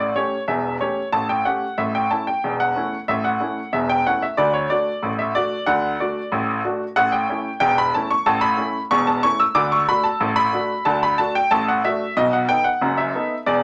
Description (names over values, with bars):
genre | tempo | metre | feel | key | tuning
ragtime piano | 92 BPM | 2/4 | straight | D major | A4 = 440 Hz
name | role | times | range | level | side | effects
clear upright piano | solo | 0.0-13.6 s | E1 to E6 | -20 LUFS | equal | none
room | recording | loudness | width
wet club reverb, RT60 0.5 s | none | -20 LUFS | mono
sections
0.0-13.6 A section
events
none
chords
0.0 A7/E; 1.8 A; 4.4 D; 7.0 A; 9.6 D; 12.2 B7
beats
| 0.48 1.13 | 1.78 2.43 | 3.08 3.73 | 4.37 5.02 | 5.67 6.32 | 6.97 7.62 | 8.27 8.92 | 9.57 10.22 | 10.87 11.52 | 12.17 12.82 | 13.48